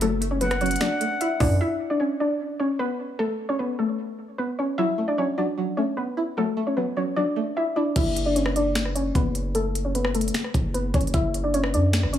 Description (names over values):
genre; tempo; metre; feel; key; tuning
hip hop, trap; 151 BPM; 4/4; half-time; unclear; A4 = 440 Hz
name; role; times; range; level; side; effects
soft round pluck; melody; 0.0-12.2 s; A3 to E5; -24 LUFS; left 1 dB; chorus, low-pass filter, digital delay
string-like resonator pluck; accompaniment; 0.0-1.6, 4.8-8.0 s; F#3 to E4; -29 LUFS; right 1 dB; chorus, low-pass filter
distorted 808-style bass; bass; 0.0-1.6, 8.0-12.2 s; F#1 to F#2; -25 LUFS; equal; distortion
trap drum kit; drums; 0.0-1.5, 8.0-12.2 s; crash cymbal, finger snaps, hi-hat, kick drum, rim click, snare drum; -26 LUFS; equal; overdrive
breathy bright jazz flute; second line; 0.4-1.6 s; F#5; -30 LUFS; left 1 dB; digital delay
room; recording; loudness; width
light reverb, digital ambience; small room ambience; -22 LUFS; side -11 dB against mid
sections
0.0-1.6 A section; 1.6-8.0 B section; 8.0-12.2 C section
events
filter sweep 8.0-12.2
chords
0.0 Dadd9/F#; 1.6 Aadd9; 4.8 Dadd9/F#